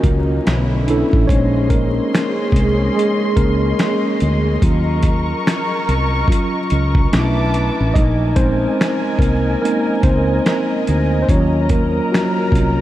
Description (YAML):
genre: lo-fi hip hop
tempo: 72 BPM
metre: 4/4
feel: swing 61% on 16ths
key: Bb minor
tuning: A4 = 440 Hz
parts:
  - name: mellow tine electric piano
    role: accompaniment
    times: 0.0-12.8 s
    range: Gb3 to Eb5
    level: -19 LUFS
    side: right 1 dB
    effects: medium stereo tremolo, low-pass filter
  - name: muted studio string section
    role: sustained chords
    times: 0.0-12.8 s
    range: D3 to D6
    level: -22 LUFS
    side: left 1 dB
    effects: low-pass filter
  - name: woody fretless electric bass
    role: bass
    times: 0.0-12.8 s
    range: A1 to Eb2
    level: -18 LUFS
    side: equal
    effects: none
  - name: dusty soul sampler-style drum kit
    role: drums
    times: 0.0-12.8 s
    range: finger snaps, hi-hat, kick drum, snare drum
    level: -19 LUFS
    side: equal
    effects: none
room: moderate huge ambient reverb, RT60 7.0 s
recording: dreamy mix soaked in reverb, vinyl crackle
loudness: -14 LUFS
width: side -14 dB against mid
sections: 0.0-1.3 A section; 1.3-12.8 B section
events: tine electric piano solo 1.3-12.8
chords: 0.5 Bm11; 1.3 Bbm11; 4.6 Ebm7; 7.1 Bm11; 8.0 Bbm11; 11.3 Ebm7